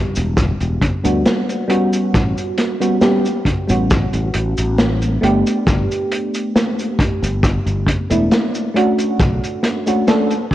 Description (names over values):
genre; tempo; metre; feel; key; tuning
vaporwave; 68 BPM; 4/4; straight; E dorian; A4 = 437 Hz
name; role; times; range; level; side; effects
mellow FM electric piano; accompaniment; 0.0-10.3 s; G3 to A4; -18 LUFS; equal; wide subtle chorus, vintage 12-bit sampler grit, analog delay
sustaining fretless electric bass; bass; 0.2-9.4 s; E1 to D2; -19 LUFS; equal; tube saturation, analog chorus
vintage drum kit; drums; 0.2-10.5 s; cabasa, hi-hat, snare drum; -19 LUFS; equal; gated reverb
kick drum; drums; 0.4-10.5 s; none; -18 LUFS; equal; none
room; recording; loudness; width
light reverb, studio reverb; cassette tape; -15 LUFS; side -13 dB against mid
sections
0.0-10.5 A section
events
none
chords
0.0 Em7; 2.1 A13; 5.2 G69; 8.8 Bm9 (rootless)